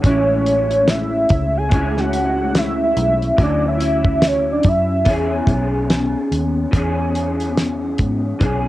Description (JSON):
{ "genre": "indie pop, bedroom pop", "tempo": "72 BPM", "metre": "4/4", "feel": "swing 60% on 16ths", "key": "E major", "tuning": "A4 = 443 Hz", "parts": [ { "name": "electric guitar through a small old amp", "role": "accompaniment", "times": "0.0-8.7 s", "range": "A2 to G#4", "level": "-21 LUFS", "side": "left 1 dB", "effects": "ensemble chorus, warbly pitch drift" }, { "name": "vintage muted fingered electric bass", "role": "bass", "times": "0.0-8.7 s", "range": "A1 to G#2", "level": "-22 LUFS", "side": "equal", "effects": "none" }, { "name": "damped 70s drum kit", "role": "drums", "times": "0.0-8.6 s", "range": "hi-hat, kick drum, snare drum", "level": "-18 LUFS", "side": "equal", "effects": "cassette tape" }, { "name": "soft octave-layered synth lead", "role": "melody", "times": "0.1-5.5 s", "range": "C#5 to G#5", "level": "-18 LUFS", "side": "right 1 dB", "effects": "phaser, analog chorus" } ], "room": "light reverb", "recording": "home recording on cassette", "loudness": "-15 LUFS", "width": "side -15 dB against mid", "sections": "0.0-6.7 A section; 6.7-8.7 B section", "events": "none", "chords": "0.0 Amaj7; 3.4 Dmaj9; 5.1 E6" }